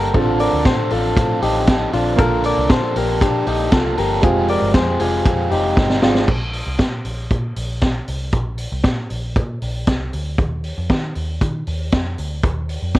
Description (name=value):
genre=jangly indie pop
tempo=117 BPM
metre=4/4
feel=straight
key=Bb major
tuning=A4 = 441 Hz
part: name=crunchy overdriven guitar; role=accompaniment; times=0.0-6.3 s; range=A2 to A4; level=-24 LUFS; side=right 4 dB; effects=none
part: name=warm upright piano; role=accompaniment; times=0.0-6.3 s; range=Ab3 to A4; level=-24 LUFS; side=right 5 dB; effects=none
part: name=direct-recorded clean electric guitar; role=arpeggios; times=0.0-6.3 s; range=D4 to D5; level=-20 LUFS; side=left 4 dB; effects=none
part: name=vintage muted picked electric bass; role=bass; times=0.0-13.0 s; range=F1 to Eb3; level=-23 LUFS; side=equal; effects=none
part: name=vintage drum kit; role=drums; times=0.1-13.0 s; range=crash cymbal, hi-hat, kick drum, ride cymbal, snare drum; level=-19 LUFS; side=equal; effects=none
room=light reverb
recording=worn, warbling old tape, cassette tape, warbly pitch drift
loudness=-16 LUFS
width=side -16 dB against mid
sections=0.0-6.3 A section; 6.3-13.0 B section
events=drum fill 5.8-6.3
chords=0.1 Dm7/A; 2.2 Bbmaj7; 4.2 Fmadd9; 6.3 Bbsus2; 10.4 Ebsus2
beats=| 0.14 0.66 1.17 1.68 | 2.19 2.70 3.21 3.72 | 4.23 4.74 5.25 5.77 | 6.28 6.79 7.30 7.82 | 8.33 8.84 9.36 9.87 | 10.38 10.90 11.41 11.92 | 12.44 12.95